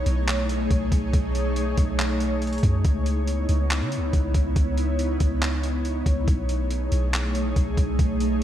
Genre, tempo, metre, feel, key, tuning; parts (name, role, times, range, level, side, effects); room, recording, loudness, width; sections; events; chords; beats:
hip hop, atmospheric cloud-rap; 140 BPM; 4/4; half-time; A4 = 440 Hz
ethereal airy pad; sustained chords; 0.0-8.4 s; A3 to C#5; -27 LUFS; equal; ensemble chorus, built-in reverb, sidechain pumping
soft 808-style bass; bass; 0.0-8.4 s; B1 to C#3; -24 LUFS; equal
trip hop sampler-style drum kit; drums; 0.1-8.3 s; handclaps, hi-hat, kick drum; -25 LUFS; equal; overdrive, gated reverb
light reverb; bright 1980s-style digital production; -21 LUFS; side -11 dB against mid
0.0-8.4 A section
0.0 B13; 2.8 C#m9; 6.3 B13
0.28 0.70 | 1.13 1.56 1.99 2.42 | 2.85 3.28 3.70 4.13 | 4.56 4.99 5.42 5.85 | 6.28 6.70 7.13 7.56 | 7.99 8.42